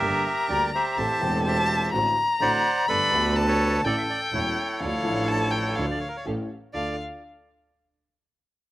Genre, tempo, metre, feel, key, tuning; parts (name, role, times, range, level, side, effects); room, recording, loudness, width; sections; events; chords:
tango; 125 BPM; 4/4; rubato; A4 = 441 Hz
bandoneon; melody; 0.0-7.0 s; E4 to F#5; -27 LUFS; right 2 dB; slapback echo
dark violin; second line; 0.0-7.0 s; F5 to B5; -26 LUFS; left 2 dB; slapback echo
warm concert grand piano; accompaniment; 0.0-6.9 s; E1 to A4; -31 LUFS; left 2 dB
dark studio string section; stabs; 0.0-6.9 s; F3 to C5; -36 LUFS; right 3 dB
clear double bass; bass; 0.0-6.9 s; E1 to D2; -30 LUFS; right 1 dB
little or no reverb; recorded outdoors, with no room sound; -22 LUFS; side -16 dB against mid
0.0-6.7 A section; 6.7-8.7 B section
0.0 Gm; 1.0 Am7; 1.9 D7/A; 2.9 Gadd9; 3.8 A; 4.8 Dm; 6.3 A7; 6.7 Dm